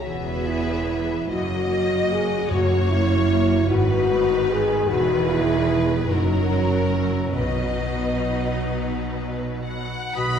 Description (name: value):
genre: classical, slow romantic movement for symphony orchestra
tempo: 38-51 BPM (dotted quarters)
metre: 6/8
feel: rubato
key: B major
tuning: A4 = 440 Hz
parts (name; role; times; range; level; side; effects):
- rich studio violin section; melody; 0.0-10.4 s; A#4 to B5; -33 LUFS; left 3 dB; none
- mellow French horn section; sustained chords; 0.0-10.4 s; F#3 to G#4; -23 LUFS; equal; none
- concert harp; arpeggios; 0.0-10.4 s; E2 to D#5; -32 LUFS; left 3 dB; none
- rich studio cello section; bass; 0.0-10.4 s; E2 to B2; -28 LUFS; right 3 dB; none
- clear studio violin section; second line; 0.1-10.4 s; A#4 to D#5; -30 LUFS; left 3 dB; none
- clear studio viola section; accompaniment; 0.1-10.4 s; D#3 to G#4; -31 LUFS; equal; none
- rich studio double bass section; bass; 0.1-10.4 s; E1 to B1; -27 LUFS; right 2 dB; none
- timpani; percussion; 2.5-3.7, 7.4-8.6 s; F#2 to B2; -30 LUFS; left 2 dB; none
- clear oboe; second line; 10.2-10.4 s; B4; -28 LUFS; right 2 dB; none
- dark clarinet; second line; 10.2-10.4 s; F#4; -30 LUFS; left 2 dB; none
- mellow hollow silver concert flute; second line; 10.2-10.4 s; D#6; -28 LUFS; left 2 dB; none
room: wet scoring stage reverb, RT60 1.7 s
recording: recorded in a church or concert hall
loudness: -19 LUFS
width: side -8 dB against mid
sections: 0.0-10.2 A section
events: none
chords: 0.0 C#m7/E; 1.3 F#; 2.5 F#7; 3.7 G#m; 4.9 Emaj7; 6.1 F#7; 7.4 B